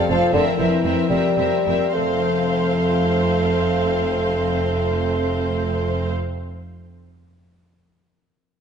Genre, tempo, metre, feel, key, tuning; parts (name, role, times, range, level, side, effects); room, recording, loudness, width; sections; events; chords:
classical; 68-86 BPM (dotted quarters); 6/8; rubato; F major; A4 = 440 Hz
warm symphonic violin section; melody; 0.0-6.1 s; E5 to F5; -29 LUFS; left 2 dB
warm symphonic violin section; second line; 0.0-6.1 s; A4 to C5; -26 LUFS; left 2 dB
mellow bassoon; accompaniment; 0.0-6.1 s; D3 to A3; -22 LUFS; equal
warm symphonic viola section; accompaniment; 0.0-6.1 s; C4; -29 LUFS; right 2 dB
concert harp; arpeggios; 0.0-6.4 s; F3 to C5; -26 LUFS; left 7 dB
rich chamber double bass section; bass; 0.1-6.1 s; F1; -27 LUFS; right 4 dB
rich symphonic cello section; bass; 0.1-6.1 s; F2; -27 LUFS; right 2 dB
moderate scoring stage reverb, RT60 1.8 s; nothing above 10.9 kHz; -18 LUFS; side -7 dB against mid
0.0-2.0 A section; 2.0-5.4 B section
slowing down 0.0-2.0
0.3 C7/F; 2.0 F